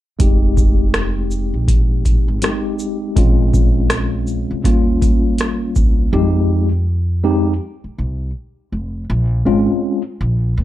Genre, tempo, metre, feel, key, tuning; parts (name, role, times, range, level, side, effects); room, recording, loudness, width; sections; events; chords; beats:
hip hop, jazz-hop; 81 BPM; 4/4; swing 61% on 16ths; F minor; A4 = 440 Hz
mellow tine electric piano; accompaniment; 0.2-10.0 s; G3 to G4; -19 LUFS; left 1 dB; medium stereo tremolo, low-pass filter
upright bass; bass; 0.2-10.6 s; F1 to F2; -19 LUFS; equal
booming analog drum machine; drums; 0.2-6.0 s; hi-hat, kick drum, rim click, shaker; -15 LUFS; equal
light reverb; dark, warm production; -14 LUFS; side -14 dB against mid
0.2-6.1 A section; 6.1-10.6 B section
filter sweep on tine electric piano 0.2-6.1
0.2 Fm9; 3.2 Bbm7; 4.6 Eb7; 6.1 Fm9; 9.1 Bbm7
| 0.20 0.94 1.69 2.43 | 3.17 3.91 4.65 5.39 | 6.13 6.87 7.61 8.35 | 9.09 9.83 10.57